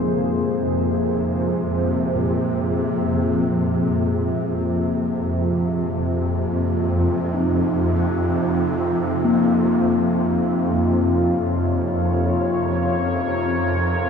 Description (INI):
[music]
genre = dark ambient drone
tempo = free time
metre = none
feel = none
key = unclear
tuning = A4 = 440 Hz
[part]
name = deep dark ambient pad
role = sustained chords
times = 0.0-14.1 s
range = F3 to Db5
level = -22 LUFS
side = equal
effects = chorus, built-in reverb
[part]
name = swarming drone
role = drone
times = 0.0-14.1 s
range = F2 to C3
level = -22 LUFS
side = equal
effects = built-in reverb
[part]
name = bronze singing bowl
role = texture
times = 0.0-14.1 s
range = F3 to F4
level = -32 LUFS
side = right 3 dB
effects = none
[part]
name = gamelan-type bossed gongs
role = arpeggios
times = 2.2-14.1 s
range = Bb2 to Eb4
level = -26 LUFS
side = left 2 dB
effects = tape echo
[sound]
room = wet cathedral reverb, RT60 6.6 s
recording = none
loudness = -18 LUFS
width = side -6 dB against mid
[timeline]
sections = 0.0-14.1 A section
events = none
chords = 0.0 Fm; 8.0 Bbm/F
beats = free time